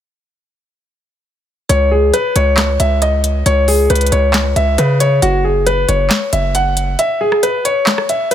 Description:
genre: hip hop, trap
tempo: 136 BPM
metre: 4/4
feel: half-time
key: unclear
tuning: A4 = 441 Hz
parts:
  - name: warm concert grand piano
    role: melody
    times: 1.7-8.3 s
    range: F#4 to F#5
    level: -14 LUFS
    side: left 1 dB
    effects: low-pass filter
  - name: hard-hitting 808-style bass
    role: bass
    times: 1.7-7.0 s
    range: F#1 to C#3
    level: -15 LUFS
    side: right 1 dB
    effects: none
  - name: trap drum kit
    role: drums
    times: 1.7-8.3 s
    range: handclaps, hi-hat, rim click, snare drum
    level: -18 LUFS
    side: equal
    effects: none
room: light reverb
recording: none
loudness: -12 LUFS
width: side -10 dB against mid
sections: 1.7-8.3 A section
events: kick muted 7.0-8.3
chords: 1.7 N.C.; 5.2 F#5; 7.0 N.C.

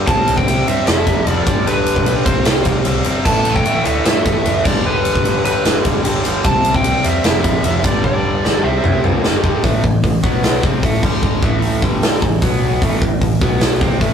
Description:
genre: hard rock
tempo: 151 BPM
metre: 4/4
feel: straight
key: A minor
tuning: A4 = 440 Hz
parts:
  - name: biting overdriven guitar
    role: riff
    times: 0.0-14.1 s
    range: F2 to C4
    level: -19 LUFS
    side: equal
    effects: none
  - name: lead guitar through a small cranked amp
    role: melody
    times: 0.1-9.0 s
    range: B4 to A5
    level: -19 LUFS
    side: right 1 dB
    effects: overdrive
  - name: picked electric bass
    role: bass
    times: 0.1-14.1 s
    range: F1 to G2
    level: -23 LUFS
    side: equal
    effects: none
  - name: big rock drum kit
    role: drums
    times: 0.1-14.1 s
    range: crash cymbal, hi-hat, kick drum, ride cymbal, snare drum, toms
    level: -16 LUFS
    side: equal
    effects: none
room: moderate studio reverb, RT60 0.6 s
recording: rough rehearsal-room recording, warm saturation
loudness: -13 LUFS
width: side -8 dB against mid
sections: 0.0-9.6 A section; 9.6-14.1 B section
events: drum fill 8.0-9.6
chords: 0.1 C5; 0.9 F5; 1.5 G; 2.3 C5; 3.3 A5; 4.7 G; 6.5 C5; 7.2 F5; 7.8 G5; 8.6 C; 9.2 G5; 9.6 A5; 10.2 B5; 10.6 Am; 11.0 G5; 11.4 A5; 11.8 G5; 12.2 A5; 12.4 B5; 12.8 A5; 13.4 B5

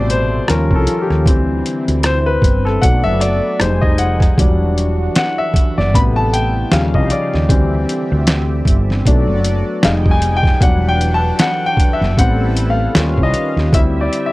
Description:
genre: R&B, neo-soul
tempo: 77 BPM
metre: 4/4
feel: swing 56% on 16ths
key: E minor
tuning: A4 = 437 Hz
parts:
  - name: warm grand piano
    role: accompaniment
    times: 0.0-14.3 s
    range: B2 to B5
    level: -17 LUFS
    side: left 2 dB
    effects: none
  - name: warm analog pad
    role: sustained chords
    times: 0.0-14.3 s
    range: C#3 to Ab5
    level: -24 LUFS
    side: right 2 dB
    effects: chorus
  - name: woody fretless electric bass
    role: bass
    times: 0.0-14.1 s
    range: E1 to D#2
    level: -16 LUFS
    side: equal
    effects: none
  - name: boom bap sampler-style drum kit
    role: drums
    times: 0.1-14.3 s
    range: hi-hat, kick drum, rim click, snare drum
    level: -15 LUFS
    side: equal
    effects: none
room: little or no reverb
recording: dark, warm production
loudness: -12 LUFS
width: side -19 dB against mid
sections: 0.0-14.3 A section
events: grand piano solo 0.0-14.3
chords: 0.5 D#9; 1.3 D9sus4; 2.8 Bm7; 3.6 Fm9; 4.4 Em9; 5.9 Am7; 6.7 D#9; 7.5 D9sus4; 9.1 Bm7; 9.8 Fm9; 10.6 Em9; 12.2 Am7; 12.9 D#9; 13.7 D9sus4

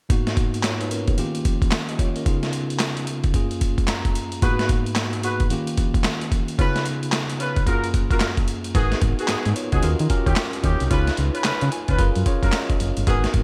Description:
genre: R&B, new jack swing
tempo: 111 BPM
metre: 4/4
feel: swing 62% on 16ths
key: G# dorian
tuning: A4 = 440 Hz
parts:
  - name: bell-like tine electric piano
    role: accompaniment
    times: 0.1-13.4 s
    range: F#2 to A#5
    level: -28 LUFS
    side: equal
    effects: none
  - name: boom bap sampler-style drum kit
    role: drums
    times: 0.1-13.4 s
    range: handclaps, hi-hat, kick drum, snare drum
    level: -25 LUFS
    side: equal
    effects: none
  - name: warm horn section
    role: stabs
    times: 4.4-13.3 s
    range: B3 to B4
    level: -30 LUFS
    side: equal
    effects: none
  - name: solid FM bass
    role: bass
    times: 8.8-13.4 s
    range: F#1 to D#3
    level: -24 LUFS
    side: equal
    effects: none
room: light reverb, digital ambience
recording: bright 1980s-style digital production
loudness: -22 LUFS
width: mono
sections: 0.1-8.7 A section; 8.7-13.4 B section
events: tine electric piano fill 3.6-4.4, 11.5-13.1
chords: 0.1 G#m7; 1.2 D#7; 2.3 C#7; 3.3 F#maj7; 4.4 G#m7; 5.5 D#7; 6.6 C#7; 7.7 F#maj7; 8.7 G#m7; 9.8 D#7; 10.9 C#7; 12.0 F#maj7

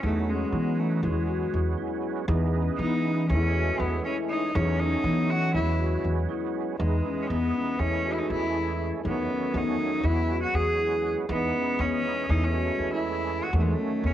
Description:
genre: progressive instrumental, progressive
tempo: 240 BPM (eighths)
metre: 9/8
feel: straight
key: E major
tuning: A4 = 439 Hz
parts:
  - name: bright cello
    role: melody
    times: 0.0-14.1 s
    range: G#3 to G#4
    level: -28 LUFS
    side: equal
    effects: cassette tape
  - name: overdriven tonewheel organ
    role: accompaniment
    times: 0.0-14.1 s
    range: D#3 to D#4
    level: -32 LUFS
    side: right 8 dB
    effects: chorus vibrato, slow rotary speaker, cassette tape
  - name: vibraphone with soft mallets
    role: arpeggios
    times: 0.0-14.1 s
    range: B3 to F#4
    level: -32 LUFS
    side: left 8 dB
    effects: cassette tape
  - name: upright bass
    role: bass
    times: 0.0-14.1 s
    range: E2 to E3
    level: -27 LUFS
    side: equal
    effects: none
room: light reverb, studio ambience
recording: home recording on cassette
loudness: -24 LUFS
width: side -12 dB against mid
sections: 0.0-6.8 A section; 6.8-14.1 B section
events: cello solo 0.0-6.8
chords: 0.0 Badd9/E; 1.0 E6; 2.3 C#m9/E; 3.3 F#m7/E; 4.5 B9/E; 5.5 E6; 6.8 C#m9/E; 7.8 F#m7/E; 9.0 B9/E; 10.0 E6; 11.3 C#m9/E; 12.3 F#m7/E; 13.5 B9/E

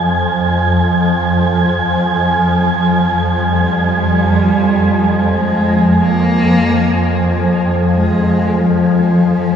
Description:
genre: dark ambient drone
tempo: free time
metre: none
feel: none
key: F minor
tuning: A4 = 443 Hz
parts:
  - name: swarming drone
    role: drone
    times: 0.0-9.6 s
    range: F2 to F3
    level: -13 LUFS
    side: equal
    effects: built-in reverb
  - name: wind-like tuned noise texture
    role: texture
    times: 0.0-9.6 s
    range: Ab5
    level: -19 LUFS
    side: right 3 dB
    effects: built-in reverb, lush chorus, shimmer reverb
  - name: warm cello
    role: melody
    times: 3.4-9.6 s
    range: F3 to Bb3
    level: -17 LUFS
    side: left 1 dB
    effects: diffuse ambient delay
room: wet lush hall reverb, RT60 2.8 s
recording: dreamy mix soaked in reverb, lossy compression artefacts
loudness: -11 LUFS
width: side -8 dB against mid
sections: 0.0-9.6 A section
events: fade-in on cello 0.0-9.6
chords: 0.0 Fmadd9

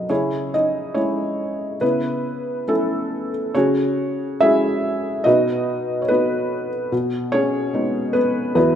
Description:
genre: classical, lyrical solo piano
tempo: 69-74 BPM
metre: 4/4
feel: rubato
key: unclear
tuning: A4 = 439 Hz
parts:
  - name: felt-muted upright piano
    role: solo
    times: 0.0-8.8 s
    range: E2 to E5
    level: -18 LUFS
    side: equal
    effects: none
room: moderate concert hall reverb, RT60 2.2 s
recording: minimal, uncompressed stereo recording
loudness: -18 LUFS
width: side -9 dB against mid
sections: 0.1-8.8 A section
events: none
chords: 0.1 C#m; 1.8 A/C#; 3.5 F#sus2/C#; 5.3 B; 6.9 G#m/B

